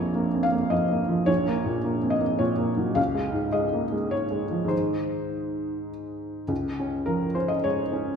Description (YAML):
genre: neoclassical minimalist piano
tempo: 105 BPM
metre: 3/4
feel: rubato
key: Db major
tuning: A4 = 440 Hz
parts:
  - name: felt-muted upright piano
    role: solo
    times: 0.0-8.2 s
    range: Bb1 to F5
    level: -23 LUFS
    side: equal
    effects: none
room: wet recital hall reverb, RT60 1.4 s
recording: recorded in a church or concert hall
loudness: -23 LUFS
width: side -6 dB against mid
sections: 0.0-6.5 A section; 6.5-8.2 B section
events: none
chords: 0.0 Bbm; 1.3 Gb/Bb (rootless); 3.0 Db; 4.7 Ab; 6.5 Db